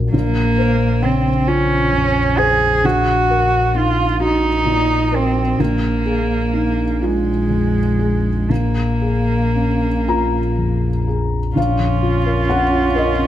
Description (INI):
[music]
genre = neoclassical piano and strings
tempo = 37-45 BPM (dotted quarters)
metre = 6/8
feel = rubato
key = Bb minor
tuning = A4 = 440 Hz
[part]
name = felt-muted upright piano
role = accompaniment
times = 0.0-13.3 s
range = Bb1 to Bb5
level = -18 LUFS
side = left 1 dB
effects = none
[part]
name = sub bass with octave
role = bass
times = 0.0-13.3 s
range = Bb1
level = -23 LUFS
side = left 1 dB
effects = none
[part]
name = dark cello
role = second line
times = 0.1-13.3 s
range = Ab3 to Ab4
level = -18 LUFS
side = right 2 dB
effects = none
[part]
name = dark viola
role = accompaniment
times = 11.6-13.3 s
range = Db4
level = -24 LUFS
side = right 1 dB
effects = none
[sound]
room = moderate recital hall reverb, RT60 1.8 s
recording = none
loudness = -15 LUFS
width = side -12 dB against mid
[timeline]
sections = 0.0-11.6 A section; 11.6-13.3 B section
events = none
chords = 0.1 Bbmadd9; 2.8 Ebm/Bb; 5.6 Fm7/Bb; 8.5 Bbm7; 11.6 Bbm